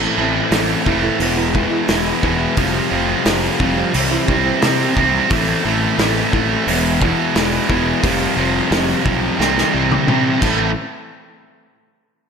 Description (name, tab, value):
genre	quiet-loud alternative rock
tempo	88 BPM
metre	4/4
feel	straight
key	A minor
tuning	A4 = 442 Hz
part	picked plugged-in acoustic archtop guitar	arpeggios	0.0-4.8 s	E3 to F4	-26 LUFS	right 4 dB	slapback echo
part	cranked stack guitar	riff	0.0-10.7 s	E2 to C4	-18 LUFS	right 9 dB	overdrive, slapback echo
part	sludgy distorted guitar	riff	0.0-10.7 s	A2 to A4	-21 LUFS	left 10 dB	overdrive, slapback echo
part	fuzz fingered electric bass	bass	0.0-10.7 s	E1 to C3	-23 LUFS	equal	overdrive
part	loose indie drum kit	drums	0.5-10.6 s	crash cymbal, hi-hat, kick drum, snare drum, toms	-20 LUFS	equal	none
room	moderate lush hall reverb, RT60 2.0 s, small room ambience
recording	big arena sound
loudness	-14 LUFS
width	side -6 dB against mid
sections	0.0-10.8 A section; 10.8-12.3 B section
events	drum fill 9.4-10.8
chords	0.0 Am; 1.2 E; 2.6 Fsus2; 3.9 C; 5.3 Am; 6.7 E; 8.0 Fsus2; 9.4 C; 10.4 Am; 10.8 N.C.